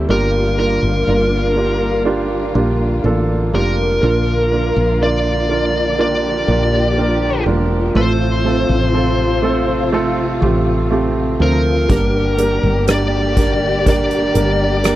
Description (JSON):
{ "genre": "pop ballad", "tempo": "61 BPM", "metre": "4/4", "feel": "straight", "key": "unclear", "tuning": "A4 = 440 Hz", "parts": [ { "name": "warm concert grand piano", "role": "accompaniment", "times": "0.0-15.0 s", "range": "G2 to C5", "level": "-19 LUFS", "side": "right 4 dB", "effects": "none" }, { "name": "warm studio string section", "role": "sustained chords", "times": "0.0-15.0 s", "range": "C3 to G4", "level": "-22 LUFS", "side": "left 4 dB", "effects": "none" }, { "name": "woody fretless electric bass", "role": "bass", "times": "0.0-15.0 s", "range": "E1 to D2", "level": "-19 LUFS", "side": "equal", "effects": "none" }, { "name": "smooth overdriven lead guitar", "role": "melody", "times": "0.1-15.0 s", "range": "Bb4 to D5", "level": "-20 LUFS", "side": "left 1 dB", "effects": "none" }, { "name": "soft-mallet drum kit", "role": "drums", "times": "11.9-15.0 s", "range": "hi-hat, kick drum, rim click", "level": "-17 LUFS", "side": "equal", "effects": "none" } ], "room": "light reverb", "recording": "dry, close 1970s-style studio recording", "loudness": "-14 LUFS", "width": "side -14 dB against mid", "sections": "0.0-4.0 A section; 4.0-15.0 B section", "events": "none", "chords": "0.1 Gm7; 4.0 Bb; 8.0 F/A; 11.9 Gm", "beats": "| 0.10 1.08 2.06 3.05 | 4.03 5.01 6.00 6.98 | 7.96 8.95 9.93 10.92 | 11.90 12.88 13.87 14.85" }